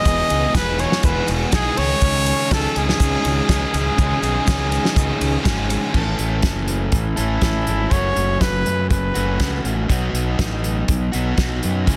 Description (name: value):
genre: indie rock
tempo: 122 BPM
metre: 4/4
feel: straight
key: A lydian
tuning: A4 = 440 Hz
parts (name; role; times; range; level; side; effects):
- clear trumpet; melody; 0.0-9.6 s; E4 to D#5; -25 LUFS; equal; none
- metallic FM bell; second line; 0.0-5.5 s; G#5 to D#6; -39 LUFS; equal; none
- overdriven electric guitar; riff; 0.0-12.0 s; E2 to A4; -26 LUFS; equal; none
- thick fuzz guitar; riff; 0.0-6.0 s; D#3 to G#4; -29 LUFS; equal; distortion, ensemble chorus
- fuzz fingered electric bass; bass; 0.1-12.0 s; E1 to F#2; -25 LUFS; equal; overdrive
- loose indie drum kit; drums; 0.1-12.0 s; crash cymbal, hi-hat, kick drum, ride cymbal, snare drum; -24 LUFS; equal; none
- egg shaker; percussion; 0.1-5.8 s; none; -37 LUFS; equal; none
room: little or no reverb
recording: dense, heavily limited modern master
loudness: -19 LUFS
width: mono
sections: 0.0-5.9 A section; 5.9-12.0 B section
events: none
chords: 0.0 Emaj7; 1.8 C#sus2; 5.9 A; 7.9 F#m; 9.9 B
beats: | 0.06 0.55 1.04 1.53 | 2.02 2.51 3.00 3.49 | 3.98 4.47 4.96 5.46 | 5.95 6.44 6.93 7.43 | 7.92 8.41 8.91 9.40 | 9.90 10.39 10.88 11.38 | 11.87